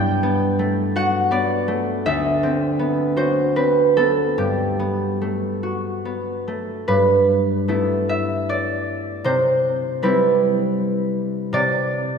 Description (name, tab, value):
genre	classical, solo harp piece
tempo	70-84 BPM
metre	3/4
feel	rubato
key	G major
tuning	A4 = 440 Hz
part	concert harp	solo	0.0-12.2 s	D2 to B5	-18 LUFS	equal	none
room	wet church reverb, RT60 2.9 s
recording	minimal, uncompressed stereo recording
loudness	-18 LUFS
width	side -6 dB against mid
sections	0.0-6.9 A section; 6.9-12.2 B section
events	none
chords	0.0 Gmaj9; 2.1 D13; 4.4 Gmaj9; 6.9 G69; 9.2 Cmaj7; 11.5 Cadd9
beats	0.59 1.31 | 2.05 2.79 3.56 | 4.38 5.22 6.05 | 6.87 7.68 8.49 | 9.25 10.02 10.78 | 11.53